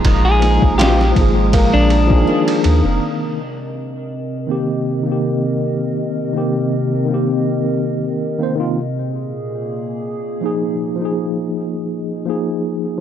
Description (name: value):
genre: trip hop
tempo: 81 BPM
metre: 4/4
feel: swing 54% on 16ths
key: C minor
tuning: A4 = 439 Hz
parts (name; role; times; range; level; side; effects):
- tine electric piano; accompaniment; 0.0-13.0 s; Eb3 to C5; -20 LUFS; equal; medium stereo tremolo, harmonic tremolo, tape echo
- warbly tape-like pad; sustained chords; 0.0-11.9 s; Bb2 to Eb6; -22 LUFS; equal; chorus, built-in reverb
- flamenco guitar; arpeggios; 0.0-3.0 s; Eb3 to F4; -25 LUFS; equal; tape echo
- trip hop sampler-style drum kit; drums; 0.0-2.8 s; kick drum, ride cymbal, snare drum; -18 LUFS; equal; overdrive
- soft dub sub bass; bass; 0.1-3.0 s; F1 to Eb2; -15 LUFS; equal; none
- clean electric guitar; melody; 0.2-2.9 s; D4 to Ab4; -20 LUFS; left 2 dB; vintage 12-bit sampler grit, tape echo
room: digital ambience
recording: dry, gritty hardware recording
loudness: -15 LUFS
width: side -10 dB against mid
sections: 0.0-3.0 A section; 3.0-13.0 B section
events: filter sweep on ambient pad 3.0-13.0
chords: 0.0 Bb7sus4; 3.0 Cm7; 8.9 Bb7sus4